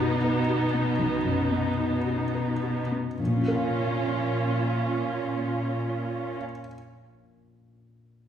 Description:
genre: cinematic.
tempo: 52-61 BPM.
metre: 4/4.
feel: rubato.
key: unclear.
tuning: A4 = 439 Hz.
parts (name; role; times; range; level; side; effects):
felt-muted upright piano; accompaniment; 0.0-8.3 s; Bb1 to F5; -29 LUFS; left 2 dB; none.
warm studio viola section; accompaniment; 0.0-6.4 s; B3 to F4; -28 LUFS; right 2 dB; none.
clear studio cello section; bass; 0.0-6.4 s; Bb2 to B2; -30 LUFS; left 1 dB; none.
room: wet recital hall reverb, RT60 1.6 s.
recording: recorded in a church or concert hall.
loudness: -24 LUFS.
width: side -9 dB against mid.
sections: 0.0-3.2 A section; 3.2-7.7 B section.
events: slowing down 0.0-3.2.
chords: 0.0 B; 3.2 Bbm.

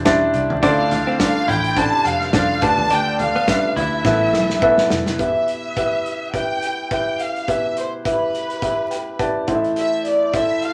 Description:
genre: piano-driven pop.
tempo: 105 BPM.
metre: 4/4.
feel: swing 56% on 16ths.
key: unclear.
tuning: A4 = 440 Hz.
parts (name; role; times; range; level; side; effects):
warm French horn section; second line; 0.0-4.9 s; C3 to E4; -32 LUFS; equal; none.
warm concert grand piano; accompaniment; 0.0-10.7 s; G2 to A5; -22 LUFS; equal; none.
vintage muted fingered electric bass; bass; 0.0-5.2 s; E1 to D2; -29 LUFS; equal; none.
loose indie drum kit; drums; 0.1-10.7 s; hi-hat, kick drum, snare drum, toms; -27 LUFS; equal; none.
warm symphonic violin section; melody; 0.6-10.7 s; B4 to A5; -24 LUFS; equal; none.
direct-recorded clean electric guitar; riff; 0.6-4.3 s; B3 to E4; -28 LUFS; equal; spring reverb.
room: wet club reverb, RT60 0.7 s.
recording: vinyl crackle.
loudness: -19 LUFS.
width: mono.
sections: 0.0-5.2 A section; 5.2-10.7 B section.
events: grand piano fill 0.0-0.6, 8.6-9.8; drum fill 4.1-5.2.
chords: 0.0 Cadd9; 0.6 Dm7; 2.6 G7/D; 4.1 Asus2; 5.2 Em; 9.5 Am.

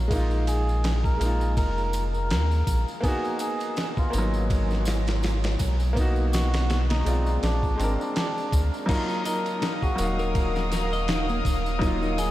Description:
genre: trip hop.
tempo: 82 BPM.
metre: 4/4.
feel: swing 56% on 16ths.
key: Eb minor from 8.9 s.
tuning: A4 = 441 Hz.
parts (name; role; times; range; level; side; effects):
bright upright piano; accompaniment; 0.0-12.3 s; Gb3 to F5; -30 LUFS; equal; harmonic tremolo, vintage 12-bit sampler grit, tape echo.
soft dub sub bass; bass; 0.0-12.3 s; Eb1 to Eb2; -25 LUFS; equal; tube saturation.
dusty soul sampler-style drum kit; drums; 0.1-12.3 s; crash cymbal, kick drum, ride cymbal, snare drum; -29 LUFS; equal; none.
tambourine; percussion; 0.1-12.3 s; none; -43 LUFS; left 1 dB; none.
trumpet with cup mute; melody; 0.5-12.3 s; D4 to Bb4; -32 LUFS; equal; tape echo.
warm studio string section; sustained chords; 8.9-12.3 s; Bb4 to Eb6; -32 LUFS; left 1 dB; none.
clean electric guitar; arpeggios; 8.9-12.3 s; Bb3 to Eb5; -32 LUFS; left 2 dB; tape echo.
room: moderate huge ambient reverb, RT60 7.3 s.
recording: dreamy mix soaked in reverb.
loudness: -22 LUFS.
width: side -15 dB against mid.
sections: 0.0-8.9 A section; 8.9-12.3 B section.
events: none.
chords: 0.1 Bb7sus4; 3.0 Abm9; 6.0 Bmaj7; 7.4 Bb7; 8.9 Ebmadd9.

